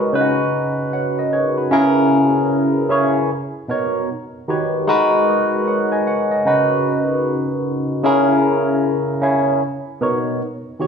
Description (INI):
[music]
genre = R&B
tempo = 76 BPM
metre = 4/4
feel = swing 62% on 16ths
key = unclear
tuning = A4 = 441 Hz
[part]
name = barky tine electric piano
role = solo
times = 0.0-10.9 s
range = B2 to G#5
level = -16 LUFS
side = equal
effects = phaser
[sound]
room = wet recital hall reverb, RT60 1.5 s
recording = recorded in a church or concert hall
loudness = -15 LUFS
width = side -6 dB against mid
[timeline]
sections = 0.0-10.9 A section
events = none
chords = 0.1 C#9sus4; 1.7 C#m6; 3.3 Bmaj9; 4.1 D#7alt; 4.9 G#m9; 6.4 C#9sus4; 8.0 C#m6; 9.6 Bmaj9